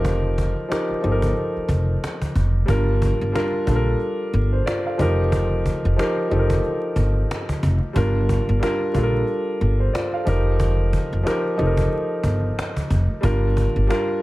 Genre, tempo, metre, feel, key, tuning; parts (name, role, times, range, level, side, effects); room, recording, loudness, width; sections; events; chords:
hip hop, boom-bap hip-hop; 91 BPM; 4/4; swing 60% on 16ths; G minor; A4 = 440 Hz
dark grand piano; accompaniment; 0.0-14.2 s; F3 to F5; -23 LUFS; equal; high-pass filter, low-pass filter
upright bass; bass; 0.0-13.9 s; F1 to Bb1; -21 LUFS; equal
cajon; drums; 0.0-14.1 s; -28 LUFS; equal
small room reverb; vinyl crackle; -19 LUFS; side -18 dB against mid
0.0-2.7 A section; 2.7-14.2 B section
0.0 F9sus4; 2.7 Gm7; 5.0 F9sus4; 8.0 Gm7; 10.3 F9sus4; 13.2 Gm7